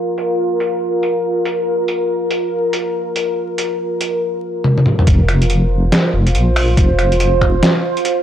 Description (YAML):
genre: deep dubstep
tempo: 141 BPM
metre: 4/4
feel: swing 62% on 16ths, half-time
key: unclear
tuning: A4 = 443 Hz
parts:
  - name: deep dark ambient pad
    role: sustained chords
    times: 0.0-8.2 s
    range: F4 to C5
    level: -18 LUFS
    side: equal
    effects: chorus, built-in reverb
  - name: trip hop sampler-style drum kit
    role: drums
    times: 0.2-8.2 s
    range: finger snaps, hi-hat, snare drum, toms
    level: -17 LUFS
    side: equal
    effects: overdrive
  - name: deep soft wobble bass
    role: bass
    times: 5.1-7.6 s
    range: F1 to Bb1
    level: -14 LUFS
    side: equal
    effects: chorus
  - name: electronic kick drum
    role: drums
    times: 5.1-7.5 s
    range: none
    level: -13 LUFS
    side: equal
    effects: overdrive
room: light reverb, digital ambience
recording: dry, gritty hardware recording, vinyl crackle, low-pass filter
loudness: -14 LUFS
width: side -10 dB against mid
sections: 0.0-5.1 A section; 5.1-8.2 B section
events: filter sweep 0.0-5.1; drum fill 4.6-5.1; drop 5.1-8.2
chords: 0.0 F5